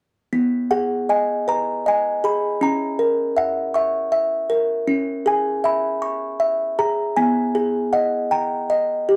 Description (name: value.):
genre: children's music.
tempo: 52 BPM (dotted quarters).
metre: 6/8.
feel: rubato.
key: G# minor.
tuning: A4 = 439 Hz.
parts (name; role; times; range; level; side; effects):
music box; melody; 0.3-9.2 s; B3 to C#6; -21 LUFS; equal; none.
room: light reverb.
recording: dry, close 1970s-style studio recording.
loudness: -21 LUFS.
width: mono.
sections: 0.3-9.2 A section.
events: none.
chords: 0.3 G#m; 2.6 A#dim; 4.9 C#m; 7.2 G#m; 8.3 D#.